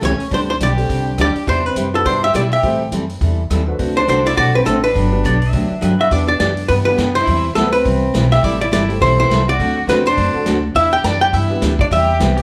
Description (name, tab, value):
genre	country, western swing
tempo	207 BPM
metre	4/4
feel	swing 59% on 8ths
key	unclear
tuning	A4 = 440 Hz
part	archtop guitar, miked and amplified	melody	0.0-12.3 s	A4 to A5	-19 LUFS	equal	none
part	dark fiddle	second line	0.0-12.3 s	B3 to D5	-26 LUFS	equal	none
part	dark upright piano	accompaniment	0.0-12.4 s	A3 to C5	-28 LUFS	equal	none
part	picked steel-string acoustic guitar	accompaniment	0.0-12.3 s	C3 to B4	-24 LUFS	equal	none
part	upright bass	bass	0.0-12.4 s	G1 to B2	-22 LUFS	equal	none
part	vintage drum kit	drums	0.0-12.4 s	hi-hat, kick drum, rim click, snare drum	-27 LUFS	equal	none
part	pedal steel guitar	second line	5.3-6.0, 12.4 s	G4 to E5	-27 LUFS	equal	none
room	moderate large studio reverb, RT60 0.8 s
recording	band playing live in one room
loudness	-16 LUFS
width	mono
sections	0.0-6.1 A section; 6.1-12.4 B section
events	none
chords	0.3 D7sus4; 1.5 Cmaj9#11; 2.6 Am7; 3.8 D7; 5.0 Gmaj7; 6.1 Em7; 7.3 Cmaj7; 8.4 Am7; 9.6 D7; 10.8 Em7; 11.9 Cmaj7